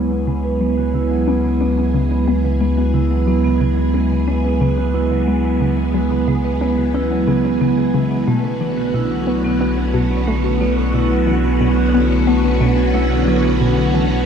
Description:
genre	ambient, sequencer-driven space music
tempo	90 BPM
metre	4/4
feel	straight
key	unclear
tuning	A4 = 439 Hz
part	phased string machine	sustained chords	0.0-14.3 s	D3 to G#4	-24 LUFS	left 1 dB	ensemble chorus, phaser
part	vibraphone with medium hard mallets	arpeggios	0.0-14.3 s	F#3 to B4	-18 LUFS	right 2 dB	auto-pan, low-pass filter, analog delay
part	hollow square pluck	riff	0.0-14.2 s	B2 to C#4	-22 LUFS	left 2 dB	chorus, phaser, analog delay
part	round analog bass	bass	0.0-14.3 s	B1 to C#2	-20 LUFS	equal	none
room	moderate huge ambient reverb, RT60 7.9 s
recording	dark, warm production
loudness	-15 LUFS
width	side -7 dB against mid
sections	0.0-14.3 A section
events	fade-in on string machine 0.0-14.3; filter sweep on vibraphone 0.0-14.3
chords	0.0 C#m; 8.3 Bmadd9

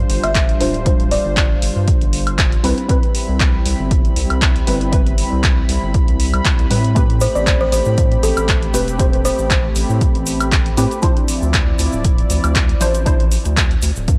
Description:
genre	deep house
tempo	118 BPM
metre	4/4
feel	swing 55% on 16ths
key	A minor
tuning	A4 = 440 Hz
part	warm analog pad	sustained chords	0.0-14.2 s	F3 to B5	-27 LUFS	equal	chorus, sidechain pumping
part	filtered dub chord stab	stabs	0.0-14.2 s	F3 to C5	-25 LUFS	equal	phaser, analog chorus, sidechain pumping, tape echo
part	round analog bass	bass	0.0-14.2 s	D1 to A2	-22 LUFS	equal	sidechain pumping
part	punchy analog drum machine	drums	0.1-14.2 s	handclaps, hi-hat, woodblock	-24 LUFS	equal	none
part	buzzing kalimba	melody	0.2-1.6, 7.2-9.8 s	A4 to E5	-24 LUFS	equal	tape echo
part	electronic kick drum	drums	0.4-14.2 s	none	-19 LUFS	equal	none
part	cabasa	percussion	7.0-14.2 s	none	-33 LUFS	equal	none
room	digital ambience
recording	dry, gritty hardware recording, cassette tape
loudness	-16 LUFS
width	mono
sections	0.0-14.2 A section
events	none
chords	0.0 G7sus4; 2.6 Cmaj7; 7.0 Am9; 11.0 Dm9

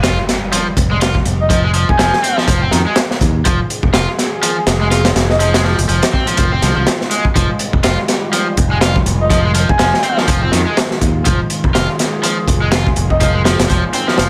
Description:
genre	breakbeat, breaks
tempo	123 BPM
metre	4/4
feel	swing 58% on 16ths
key	F minor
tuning	A4 = 442 Hz
part	phased analog pad	sustained chords	0.0-14.3 s	Eb3 to Ab4	-26 LUFS	equal	phaser, chorus, vintage 12-bit sampler grit, sidechain pumping
part	crunchy overdriven guitar	riff	0.0-14.3 s	Eb3 to F4	-21 LUFS	equal	tube saturation, tape echo
part	fingered electric bass	bass	0.0-14.3 s	F1 to F2	-19 LUFS	equal	none
part	crunchy breakbeat drum kit	drums	0.0-14.3 s	hi-hat, kick drum, snare drum	-18 LUFS	equal	none
part	impact	sound effects	0.0-1.5 s	none	-30 LUFS	equal	none
part	breathy flute-like synth lead	melody	1.4-5.5, 9.2-13.3 s	Eb5 to Ab5	-21 LUFS	equal	chorus, old record sound, vintage 12-bit sampler grit, tape echo
room	light reverb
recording	none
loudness	-14 LUFS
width	mono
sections	0.0-14.3 A section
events	impact 0.0-1.5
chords	0.0 Fm9

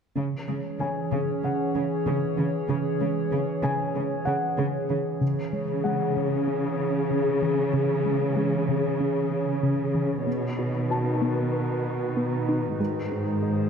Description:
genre	cinematic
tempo	95 BPM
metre	4/4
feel	straight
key	C# minor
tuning	A4 = 440 Hz
part	warbly tape-like pad	sustained chords	0.4-13.7 s	D#3 to C#5	-27 LUFS	equal	chorus, built-in reverb
part	tight sequenced synth	arpeggios	0.2-13.6 s	C#3 to B4	-31 LUFS	left 1 dB	chorus
part	warm symphonic cello section	bass	0.2-13.7 s	G#2 to C#3	-28 LUFS	right 1 dB	none
part	warm concert grand piano	texture	0.8-12.8 s	F#5 to A5	-34 LUFS	left 2 dB	ping-pong delay
room	moderate scoring stage reverb, RT60 1.8 s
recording	none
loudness	-24 LUFS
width	side -6 dB against mid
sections	0.2-5.2 A section; 5.2-13.7 B section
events	build-up 5.2-13.7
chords	0.2 C#m; 10.3 B; 12.8 G#

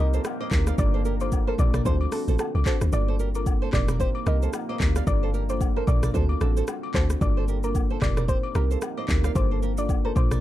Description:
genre	afrobeats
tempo	112 BPM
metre	4/4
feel	swing 58% on 16ths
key	G minor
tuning	A4 = 440 Hz
part	soft round pluck	melody	0.0-10.3 s	A4 to Eb5	-33 LUFS	equal	chorus, ping-pong delay
part	marimba with medium mallets	accompaniment	0.0-10.4 s	Bb3 to Bb4	-33 LUFS	left 2 dB	none
part	deep dark ambient pad	sustained chords	0.0-10.4 s	F3 to G4	-36 LUFS	right 1 dB	chorus, built-in reverb
part	flamenco guitar	riff	0.0-10.4 s	F#4 to F5	-34 LUFS	right 8 dB	ping-pong delay
part	deep log drum bass	bass	0.0-10.4 s	F1 to D2	-24 LUFS	equal	none
part	afro-pop drum kit	drums	0.1-10.4 s	handclaps, hi-hat, kick drum, rim click, shaker, toms	-25 LUFS	equal	none
part	woodblock and agogo bells	percussion	0.3-10.3 s	none	-38 LUFS	left 9 dB	none
room	little or no reverb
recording	dark, warm production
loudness	-22 LUFS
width	side -14 dB against mid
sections	0.0-10.4 A section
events	kick muted 2.9-3.5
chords	0.0 F9sus4; 0.8 Gm7; 1.9 D7; 2.9 Gm7; 3.7 F9sus4; 5.1 Gm7; 6.1 D7; 7.2 Gm7; 8.0 F9sus4; 9.4 Gm7

